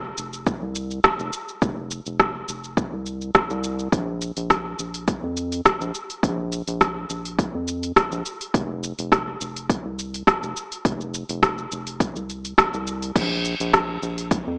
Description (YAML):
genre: sunset chillout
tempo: 104 BPM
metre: 4/4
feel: straight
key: unclear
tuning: A4 = 440 Hz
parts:
  - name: round analog bass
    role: bass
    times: 0.0-14.6 s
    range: F1 to F2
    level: -29 LUFS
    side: equal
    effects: none
  - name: smooth R&B drum kit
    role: drums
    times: 0.2-14.4 s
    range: crash cymbal, hi-hat, rim click, shaker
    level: -21 LUFS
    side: equal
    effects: none
  - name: electronic kick drum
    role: drums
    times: 0.5-14.4 s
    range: none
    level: -24 LUFS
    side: equal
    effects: overdrive
room: light reverb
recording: dry, gritty hardware recording, transformer saturation, AM radio sound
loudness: -21 LUFS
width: side -29 dB against mid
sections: 0.0-13.2 A section; 13.2-14.6 B section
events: none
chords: none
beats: 0.47 1.04 | 1.62 2.20 2.77 3.35 | 3.93 4.50 5.08 5.66 | 6.24 6.81 7.39 7.97 | 8.54 9.12 9.70 10.27 | 10.85 11.43 12.01 12.58 | 13.16 13.74 14.31